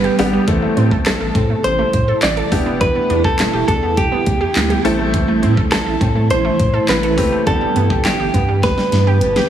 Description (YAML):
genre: dance-pop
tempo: 103 BPM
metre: 4/4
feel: straight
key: A minor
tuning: A4 = 440 Hz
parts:
  - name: direct-recorded clean electric guitar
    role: melody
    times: 0.0-9.5 s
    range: G4 to D5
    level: -18 LUFS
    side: equal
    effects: warbly pitch drift, tape echo
  - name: granular cloud pad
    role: sustained chords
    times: 0.0-9.5 s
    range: C3 to G4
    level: -22 LUFS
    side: right 3 dB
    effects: built-in reverb, sidechain pumping
  - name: wide unison pluck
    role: arpeggios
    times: 0.0-9.5 s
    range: D3 to A4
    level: -24 LUFS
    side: right 4 dB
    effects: sidechain pumping, tape echo
  - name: round analog bass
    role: bass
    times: 0.0-9.4 s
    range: E1 to A2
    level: -19 LUFS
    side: equal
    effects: sidechain pumping
  - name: smooth R&B drum kit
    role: drums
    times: 0.0-9.5 s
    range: handclaps, hi-hat, kick drum, snare drum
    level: -19 LUFS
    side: equal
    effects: none
  - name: clear baby grand piano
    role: accompaniment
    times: 0.2-8.3 s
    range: G3 to A4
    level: -20 LUFS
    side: left 3 dB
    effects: sidechain pumping
room: light reverb, digital ambience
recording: heavily compressed radio sound, multiband compression, small room ambience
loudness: -13 LUFS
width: side -10 dB against mid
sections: 0.0-9.5 A section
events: drum fill 8.6-9.5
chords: 0.5 Am; 2.5 Em7; 4.8 Am; 7.5 G